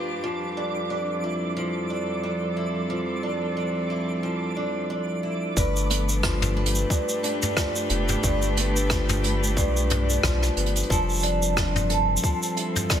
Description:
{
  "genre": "folktronica",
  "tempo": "90 BPM",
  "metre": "4/4",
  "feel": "swing 56% on 16ths",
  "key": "unclear",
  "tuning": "A4 = 440 Hz",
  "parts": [
    { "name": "dark string quartet", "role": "sustained chords", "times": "0.0-13.0 s", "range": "F2 to B4", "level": "-29 LUFS", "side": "right 1 dB", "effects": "none" },
    { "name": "picked old ladder-braced acoustic guitar", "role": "arpeggios", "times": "0.0-13.0 s", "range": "G2 to B4", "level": "-28 LUFS", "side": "equal", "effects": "tape echo" },
    { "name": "twinkling granular texture", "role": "texture", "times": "0.0-5.6 s", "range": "D6", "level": "-36 LUFS", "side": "right 4 dB", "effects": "built-in reverb" },
    { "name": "round analog bass", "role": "bass", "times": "5.6-12.2 s", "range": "F1 to B1", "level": "-25 LUFS", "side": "equal", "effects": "none" },
    { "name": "electronic kick drum", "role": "drums", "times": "5.6-13.0 s", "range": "none", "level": "-26 LUFS", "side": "equal", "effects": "none" },
    { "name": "vintage brush drum kit", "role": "drums", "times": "5.6-13.0 s", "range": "hi-hat, rim click, shaker, toms", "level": "-27 LUFS", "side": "equal", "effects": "none" }
  ],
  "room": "small room ambience",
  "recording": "none",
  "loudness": "-22 LUFS",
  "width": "side -9 dB against mid",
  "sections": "0.0-5.6 A section; 5.6-13.0 B section",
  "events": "none",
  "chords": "0.2 Dmadd9/F; 5.6 G7; 10.9 Dmadd9/F"
}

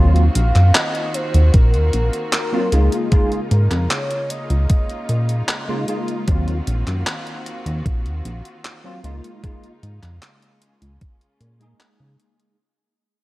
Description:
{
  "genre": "vaporwave",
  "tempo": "76 BPM",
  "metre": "4/4",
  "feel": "straight",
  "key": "unclear",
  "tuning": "A4 = 441 Hz",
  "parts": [
    { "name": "bell-like tine electric piano", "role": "accompaniment", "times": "0.0-12.6 s", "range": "Gb3 to Ab4", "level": "-25 LUFS", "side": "equal", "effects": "ensemble chorus, analog delay" },
    { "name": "clear symphonic string section", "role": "sustained chords", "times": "0.0-12.6 s", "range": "Db3 to Gb4", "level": "-31 LUFS", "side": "equal", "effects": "vintage 12-bit sampler grit" },
    { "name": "chorused synth bass", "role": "bass", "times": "0.0-12.2 s", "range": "Bb1 to Db3", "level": "-16 LUFS", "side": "equal", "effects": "none" },
    { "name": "detuned 8-bit digital drum machine", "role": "drums", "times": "0.2-12.6 s", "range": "handclaps, hi-hat", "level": "-22 LUFS", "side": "equal", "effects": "overdrive, gated reverb" },
    { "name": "warm velvety synth lead", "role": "melody", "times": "0.4-5.8 s", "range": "Ab4 to F5", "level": "-26 LUFS", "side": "equal", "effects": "chorus, tape echo" },
    { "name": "electronic kick drum", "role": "drums", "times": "1.5-11.2 s", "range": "none", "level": "-16 LUFS", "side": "equal", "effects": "overdrive" }
  ],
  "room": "light reverb, digital ambience",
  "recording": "cassette tape",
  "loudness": "-16 LUFS",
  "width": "side -18 dB against mid",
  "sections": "0.0-12.6 A section",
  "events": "fade-out 0.0-12.6",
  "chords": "0.0 Ebm69; 2.7 Db69; 6.3 Ebm69; 9.0 Db69"
}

